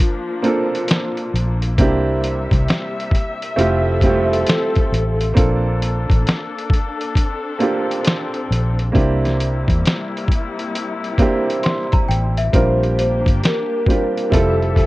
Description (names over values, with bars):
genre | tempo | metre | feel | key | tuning
lo-fi hip hop | 67 BPM | 4/4 | swing 66% on 16ths | unclear | A4 = 440 Hz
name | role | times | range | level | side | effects
vibraphone with soft mallets | melody | 0.0-5.4, 12.5-14.9 s | F4 to C5 | -24 LUFS | left 1 dB | none
warm upright piano | accompaniment | 0.0-14.9 s | G3 to Bb4 | -21 LUFS | right 2 dB | cassette tape
muted studio string section | sustained chords | 0.0-14.9 s | C3 to E5 | -26 LUFS | left 3 dB | none
lo-fi sampler-style drum kit | drums | 0.0-14.9 s | hi-hat, kick drum, snare drum | -17 LUFS | equal | none
vintage muted fingered electric bass | bass | 1.3-14.9 s | F1 to E2 | -19 LUFS | equal | none
worn celesta | second line | 11.6-12.8 s | E5 to C6 | -26 LUFS | left 1 dB | analog delay
room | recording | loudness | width
little or no reverb | worn, warbling old tape, cassette tape, warbly pitch drift | -16 LUFS | side -19 dB against mid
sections
0.0-12.5 A section; 12.5-14.9 B section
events
none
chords
0.0 Bbmaj7; 1.8 C7; 3.6 Fmaj7; 5.4 Bbmaj7; 8.9 C7; 12.5 Bb6; 14.3 Fmaj9